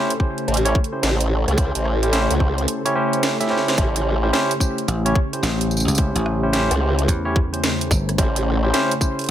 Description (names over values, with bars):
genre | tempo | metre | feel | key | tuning
glitch hop | 109 BPM | 4/4 | swing 64% on 16ths | unclear | A4 = 440 Hz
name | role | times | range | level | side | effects
warm analog pad | sustained chords | 0.0-9.3 s | C#3 to B#4 | -26 LUFS | left 1 dB | chorus, sidechain pumping
barky tine electric piano | stabs | 0.0-9.3 s | C#4 to E5 | -23 LUFS | right 1 dB | sidechain pumping, dub echo
drum and bass drum kit | drums | 0.1-9.3 s | hi-hat, rim click, snare drum, tambourine | -24 LUFS | right 1 dB | overdrive
electronic kick drum | drums | 0.2-9.2 s | none | -19 LUFS | equal | overdrive
formant-sweep wobble bass | bass | 0.5-8.7 s | A1 to C#2 | -20 LUFS | equal | chorus, overdrive
dry thumbed slap bass | bass | 4.9-8.2 s | G1 to E2 | -22 LUFS | equal | none
room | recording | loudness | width
light reverb | none | -17 LUFS | side -11 dB against mid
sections
0.0-9.3 A section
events
kick drops out 2.7-3.8; drum fill 3.4-3.8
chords
0.0 A7#9